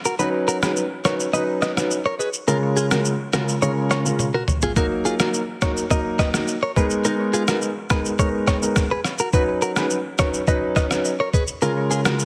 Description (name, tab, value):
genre	afrobeats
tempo	105 BPM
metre	4/4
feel	straight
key	unclear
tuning	A4 = 440 Hz
part	trip hop sampler-style drum kit	drums	0.0-12.2 s	kick drum, rim click, shaker, toms	-25 LUFS	equal	none
part	direct-recorded clean electric guitar	riff	0.1-12.1 s	Eb4 to D#5	-27 LUFS	equal	tape echo
part	dark grand piano	accompaniment	0.2-12.2 s	Db3 to B4	-24 LUFS	equal	none
room	light reverb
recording	heavily compressed radio sound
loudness	-21 LUFS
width	mono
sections	0.0-12.2 A section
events	break 0.0-4.8; drum fill 4.2-4.8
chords	0.2 Badd9; 2.5 Bbm7/Db; 4.8 Ebm; 6.8 Abmadd9; 9.3 Badd9; 11.6 Bbm7/Db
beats	| 0.19 0.77 1.34 1.91 | 2.48 3.05 3.62 4.19 | 4.76 5.34 5.91 6.48 | 7.05 7.62 8.19 8.77 | 9.34 9.91 10.48 11.05 | 11.62 12.19